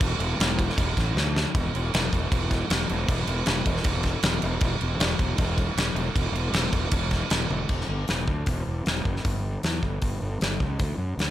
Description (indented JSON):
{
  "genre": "hard rock",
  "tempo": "156 BPM",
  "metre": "4/4",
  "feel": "straight",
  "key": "E dorian",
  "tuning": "A4 = 440 Hz",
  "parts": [
    { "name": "fuzz fingered electric bass", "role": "bass", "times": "0.0-11.3 s", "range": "E1 to F#2", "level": "-27 LUFS", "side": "equal", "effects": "overdrive" },
    { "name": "big rock drum kit", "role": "drums", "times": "0.0-11.3 s", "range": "crash cymbal, hi-hat, kick drum, snare drum, toms", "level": "-25 LUFS", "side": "equal", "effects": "none" }
  ],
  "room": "little or no reverb",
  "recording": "none",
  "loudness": "-23 LUFS",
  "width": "side -13 dB against mid",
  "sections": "0.0-1.5 A section; 1.5-7.7 B section; 7.7-11.3 C section",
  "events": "drum fill 1.2-1.5, 7.5",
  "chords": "none"
}